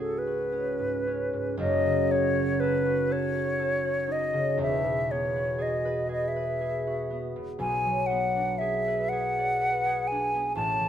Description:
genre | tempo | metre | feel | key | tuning
classical, impressionist duo for flute and harp | 60 BPM | 3/4 | rubato | F# dorian | A4 = 440 Hz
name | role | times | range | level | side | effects
hollow concert flute | melody | 0.0-10.9 s | A4 to A5 | -27 LUFS | left 1 dB | none
concert harp | accompaniment | 0.0-10.9 s | E1 to D5 | -29 LUFS | equal | none
room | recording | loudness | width
moderate recital hall reverb, RT60 1.5 s | close, detailed microphones | -25 LUFS | side -10 dB against mid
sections
0.0-1.6 A section; 1.6-10.9 B section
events
none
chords
0.0 C#7sus4; 1.6 F#m6; 4.6 Eadd9; 7.6 Bm6

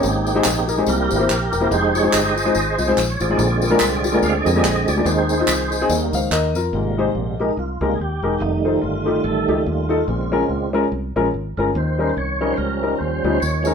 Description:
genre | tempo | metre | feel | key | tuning
uptempo gospel | 144 BPM | 4/4 | swing 57% on 8ths | Ab major | A4 = 440 Hz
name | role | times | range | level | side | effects
warm upright piano | accompaniment | 0.0-13.7 s | Ab2 to F5 | -20 LUFS | left 3 dB | none
tonewheel organ | sustained chords | 0.0-13.7 s | C3 to F5 | -21 LUFS | right 3 dB | slow rotary speaker, chorus vibrato
fingered electric bass | bass | 0.0-13.7 s | E1 to F2 | -24 LUFS | equal | none
tambourine and handclaps | percussion | 0.0-6.6, 13.4-13.7 s | none | -26 LUFS | equal | none
room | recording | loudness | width
moderate studio reverb, RT60 0.8 s | band playing live in one room | -17 LUFS | side -6 dB against mid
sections
0.0-6.7 A section; 6.7-13.7 B section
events
tonewheel organ solo 0.0-6.7, 6.7-13.7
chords
0.0 Abmaj7; 0.9 C7; 1.7 Fm7; 3.4 Bb7; 5.1 Ab/Eb; 5.9 Eb; 6.7 Abmaj7; 8.4 F7; 10.1 Bbm7; 11.8 Eb7

